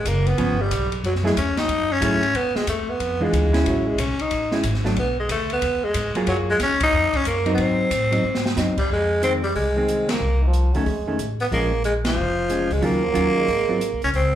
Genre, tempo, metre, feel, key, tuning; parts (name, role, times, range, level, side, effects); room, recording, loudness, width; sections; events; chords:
jazz, small-group swing and bop; 183 BPM; 4/4; swing 64% on 8ths; F minor from 8.9 s; A4 = 440 Hz
growling tenor saxophone; melody; 0.0-14.4 s; F3 to D#4; -22 LUFS; equal; slapback echo
upright bass; bass; 0.0-14.4 s; F1 to A2; -24 LUFS; equal
open jazz drum kit; drums; 0.1-14.2 s; crash cymbal, hi-hat, kick drum, ride cymbal, snare drum; -29 LUFS; equal
hollow-body jazz guitar; accompaniment; 0.4-13.8 s; Eb3 to G#4; -24 LUFS; right 1 dB; slapback echo
warm trombone; second line; 10.4-13.9 s; Eb3 to G#3; -29 LUFS; right 3 dB; slapback echo
moderate club reverb, RT60 0.6 s; live gig heard through the venue's PA, club reverb; -19 LUFS; side -11 dB against mid
0.0-8.9 A section; 8.9-14.4 B section
band accent 6.8, 10.0, 12.0; drum fill 8.2-8.6
0.4 G7#11; 1.0 F#m9; 2.3 E7b9; 3.7 Amaj7; 5.0 Bm; 5.6 Eadd9; 6.3 F#maj9; 7.6 G#7; 8.9 Fm7; 10.2 Eb7sus2/C; 10.9 F7alt; 11.5 Bbm7; 12.8 Ebm9; 13.5 Ab13